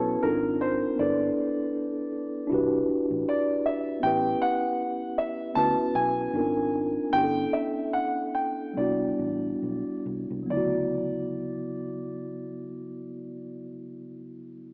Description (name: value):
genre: R&B, neo-soul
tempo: 67-79 BPM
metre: 4/4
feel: swing 55% on 16ths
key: D major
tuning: A4 = 436 Hz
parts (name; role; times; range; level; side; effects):
- warm grand piano; melody; 0.0-13.7 s; A4 to A5; -28 LUFS; equal; none
- mellow tine electric piano; accompaniment; 0.0-14.7 s; C#3 to B4; -27 LUFS; equal; fast stereo tremolo
- vintage muted fingered electric bass; bass; 0.0-13.7 s; G1 to D2; -39 LUFS; equal; none
room: moderate lush hall reverb, RT60 2.4 s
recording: rough home demo mix, small speaker sound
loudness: -24 LUFS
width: side -37 dB against mid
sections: 0.0-10.5 A section; 10.5-14.1 B section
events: slowing down 4.0-10.5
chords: 0.2 G#69; 1.0 G69; 2.5 Cmaj9; 4.0 A13; 5.5 Dmaj13; 6.3 G#69; 7.1 G69; 8.8 Cmaj9; 10.5 Dmaj13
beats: 0.22 | 0.98 1.74 2.50 3.26 | 4.02 4.78 5.55 6.32 | 7.12 7.92 8.75 9.60 | 10.48 11.38 12.27 13.16